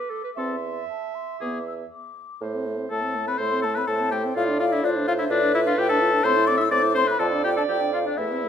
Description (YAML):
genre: quick classical-period movement for wind quintet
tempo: 112-129 BPM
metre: 4/4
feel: rubato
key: A minor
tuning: A4 = 439 Hz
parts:
  - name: mellow hollow concert flute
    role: melody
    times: 0.0-8.5 s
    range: D5 to E6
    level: -26 LUFS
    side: left 7 dB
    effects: none
  - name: warm clarinet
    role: accompaniment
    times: 0.0-8.5 s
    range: A4 to E5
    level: -28 LUFS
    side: right 7 dB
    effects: none
  - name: clear oboe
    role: second line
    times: 0.4-8.5 s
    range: D4 to E5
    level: -26 LUFS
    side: left 4 dB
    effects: none
  - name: mellow French horn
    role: accompaniment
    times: 0.4-8.5 s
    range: A3 to F4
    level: -30 LUFS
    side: left 1 dB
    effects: none
  - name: mellow bassoon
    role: bass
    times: 0.4-8.5 s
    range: E2 to A2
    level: -27 LUFS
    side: right 3 dB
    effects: none
room: moderate recital hall reverb, RT60 1.5 s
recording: none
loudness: -21 LUFS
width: side -8 dB against mid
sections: 0.0-2.4 A section; 2.4-8.5 B section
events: none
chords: 0.4 Am/E; 1.4 E5; 2.4 Am; 4.4 Dm/A; 6.2 Am; 7.2 Dm/F